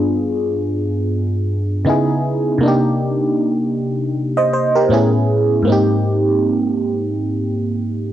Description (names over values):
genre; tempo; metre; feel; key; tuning
R&B; 79 BPM; 4/4; swing 58% on 16ths; unclear; A4 = 441 Hz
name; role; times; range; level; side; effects
FM electric piano; solo; 0.0-8.1 s; G2 to Eb5; -15 LUFS; equal; chorus, phaser
room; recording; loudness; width
moderate small room reverb, RT60 0.6 s; home recording on cassette; -15 LUFS; side -11 dB against mid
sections
0.0-8.1 A section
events
none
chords
0.0 G7b9; 1.9 Dbm7; 2.6 Cm7; 4.9 Amaj9; 5.7 Abmaj9